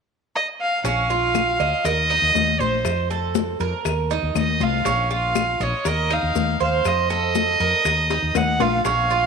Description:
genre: latin, Cuban son and guajira.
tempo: 120 BPM.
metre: 4/4.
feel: straight.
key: Bb harmonic minor.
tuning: A4 = 442 Hz.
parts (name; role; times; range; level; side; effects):
rich violin; melody; 0.4-9.3 s; C5 to Gb5; -21 LUFS; right 1 dB; none.
Cuban tres; arpeggios; 0.8-9.3 s; Db4 to Eb5; -24 LUFS; right 10 dB; none.
woody fretless electric bass; bass; 0.8-9.3 s; Bb1 to F2; -25 LUFS; left 1 dB; none.
bongos; percussion; 0.8-9.3 s; none; -31 LUFS; left 13 dB; none.
congas; percussion; 0.8-9.3 s; none; -27 LUFS; left 17 dB; none.
maracas; percussion; 0.8-9.3 s; none; -38 LUFS; left 17 dB; none.
claves; percussion; 1.3-8.6 s; none; -32 LUFS; left 14 dB; none.
room: moderate plate reverb, RT60 3.3 s.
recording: 1960s-style stereo with parts hard left and right.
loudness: -18 LUFS.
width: side -5 dB against mid.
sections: 0.8-9.3 A section.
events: drum fill 8.1-8.9.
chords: 0.0 N.C.; 0.8 Bbm; 1.9 Eb5; 2.9 F; 3.9 Ebsus2; 4.9 Bbm; 5.9 Ebsus2; 6.9 F7; 7.9 Ebsus2.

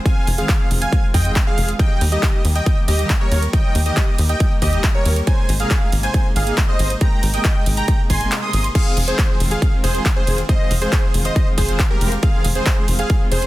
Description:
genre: uplifting trance.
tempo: 138 BPM.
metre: 4/4.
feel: straight.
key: F minor.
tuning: A4 = 440 Hz.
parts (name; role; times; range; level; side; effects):
dense compressed supersaw; melody; 0.1-13.5 s; G4 to Eb6; -24 LUFS; right 1 dB; cassette tape, sidechain pumping, digital delay.
supersaw stab; second line; 0.1-13.5 s; Bb4 to Eb6; -30 LUFS; equal; vintage 12-bit sampler grit, sidechain pumping, digital delay.
dark chamber string section; sustained chords; 0.1-13.5 s; C3 to G4; -27 LUFS; right 1 dB; sidechain pumping.
big-room dance drum kit; drums; 0.1-13.5 s; crash cymbal, handclaps, hi-hat, ride cymbal; -25 LUFS; right 1 dB; sidechain pumping on hats, sidechain pumping on cymbals.
electronic kick drum; drums; 0.1-13.2 s; none; -17 LUFS; equal; none.
tight sequencer bass; bass; 0.3-13.5 s; F1 to F2; -19 LUFS; equal; sidechain pumping.
room: little or no reverb.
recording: dense, heavily limited modern master.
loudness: -15 LUFS.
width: side -17 dB against mid.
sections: 0.0-8.8 A section; 8.8-13.5 A section.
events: drop 0.0-8.8, 8.8-13.5; kick drops out 8.3-8.8.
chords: 0.0 Fm7; 1.8 Eb; 5.3 Abadd9; 8.8 Fm7.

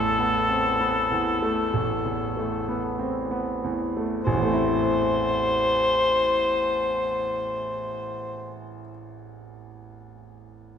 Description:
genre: classical, impressionist duo for cor anglais and grand piano.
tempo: 49 BPM.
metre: 4/4.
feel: rubato.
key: A minor.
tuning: A4 = 440 Hz.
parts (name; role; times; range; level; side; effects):
mellow cor anglais; melody; 0.0-8.6 s; A4 to C5; -24 LUFS; left 2 dB; none.
clear concert grand piano; accompaniment; 0.0-10.8 s; A1 to E4; -27 LUFS; right 1 dB; none.
room: wet concert hall reverb, RT60 2.2 s.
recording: none.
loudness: -22 LUFS.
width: side -8 dB against mid.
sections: 0.0-4.3 A section; 4.3-9.1 B section.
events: slowing down 0.0-4.3.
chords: 0.0 Amadd9; 4.3 Am.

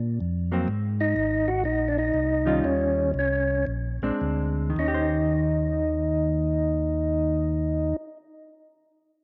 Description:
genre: soul jazz organ trio.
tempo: 106-126 BPM.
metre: 4/4.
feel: swing 66% on 8ths.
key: Eb mixolydian.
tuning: A4 = 440 Hz.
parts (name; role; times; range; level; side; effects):
mellow tonewheel organ; bass; 0.0-7.9 s; Ab1 to Bb2; -30 LUFS; equal; overdrive, chorus vibrato, slow rotary speaker.
hollow-body jazz guitar; accompaniment; 0.5-8.2 s; Eb3 to C5; -32 LUFS; equal; none.
percussive tonewheel organ; melody; 1.0-8.0 s; Db4 to Gb4; -27 LUFS; equal; slow rotary speaker.
room: light reverb, digital ambience.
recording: none.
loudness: -25 LUFS.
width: mono.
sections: 0.0-4.8 A section; 4.8-9.2 B section.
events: slowing down 0.7-4.8.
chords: 0.0 Bbsus2; 0.7 Abadd9; 2.6 Eb9; 3.7 Bb9; 4.8 Eb6.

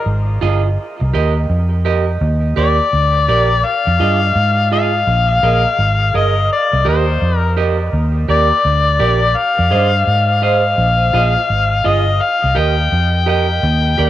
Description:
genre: roots reggae.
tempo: 84 BPM.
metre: 4/4.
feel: swing 64% on 16ths.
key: unclear.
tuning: A4 = 438 Hz.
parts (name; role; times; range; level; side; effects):
overdriven harmonica; melody; 0.0-14.1 s; C5 to G5; -16 LUFS; left 4 dB; cassette tape, dub echo.
vintage muted fingered electric bass; bass; 0.1-14.1 s; G1 to Ab2; -16 LUFS; equal; none.
clean electric guitar; accompaniment; 0.4-14.1 s; F4 to Eb5; -20 LUFS; right 7 dB; cassette tape, dub echo.
room: light reverb, small room ambience.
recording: home recording on cassette.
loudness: -12 LUFS.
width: side -13 dB against mid.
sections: 0.0-14.1 A section.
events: none.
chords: 0.0 Bb7sus4 (rootless); 0.8 Cm7 (rootless); 2.2 Ebmaj7; 3.6 Fm7; 5.1 Bb7sus4; 6.5 Cm7; 7.9 Ebmaj7; 9.3 Fm7; 10.8 Bb7sus4; 12.2 Cm7 (rootless).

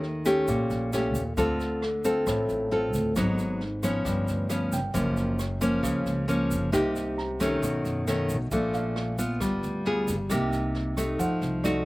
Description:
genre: bossa nova.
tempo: 134 BPM.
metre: 4/4.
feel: straight.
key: unclear.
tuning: A4 = 439 Hz.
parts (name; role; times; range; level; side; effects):
nylon-string guitar; accompaniment; 0.0-11.8 s; Gb2 to A4; -25 LUFS; equal; none.
upright bass; bass; 0.0-11.8 s; Gb1 to F#2; -33 LUFS; equal; none.
jazz brush drum kit; drums; 0.0-11.7 s; kick drum, rim click, snare drum; -39 LUFS; right 1 dB; none.
egg shaker; percussion; 0.3-11.8 s; none; -42 LUFS; right 3 dB; none.
warm baby grand piano; accompaniment; 4.7-11.8 s; D5 to Bb5; -37 LUFS; right 4 dB; none.
room: little or no reverb.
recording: none.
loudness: -24 LUFS.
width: side -20 dB against mid.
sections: 0.0-11.8 A section.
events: none.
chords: 0.0 Eb7#11; 1.4 Dm7; 3.2 Abm7; 4.1 G7#11; 5.0 Gbmaj7; 6.7 Cm7; 7.6 B9; 8.5 Bbmaj7; 9.4 G7b9; 10.3 Cm7; 11.2 F7b9.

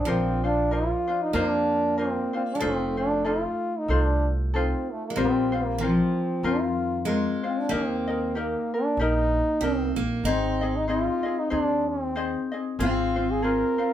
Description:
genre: Hawaiian.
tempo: 94 BPM.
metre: 4/4.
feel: swing 57% on 8ths.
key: unclear.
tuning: A4 = 440 Hz.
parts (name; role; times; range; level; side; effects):
warm trombone; melody; 0.0-13.9 s; A3 to Bb4; -26 LUFS; right 1 dB; none.
ukulele; accompaniment; 0.0-13.9 s; C4 to Eb5; -28 LUFS; left 4 dB; none.
upright bass; bass; 0.0-13.6 s; F1 to F2; -30 LUFS; right 1 dB; none.
picked steel-string acoustic guitar; second line; 0.1-13.9 s; F3 to Eb4; -30 LUFS; right 2 dB; none.
room: moderate studio ambience, RT60 0.5 s.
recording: band playing live in one room.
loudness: -23 LUFS.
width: side -11 dB against mid.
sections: 0.1-13.9 A section.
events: none.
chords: 0.1 Bbadd9; 2.6 F7; 5.2 Bbsus2; 7.7 Eb; 10.2 Ab; 12.8 Fm/Ab.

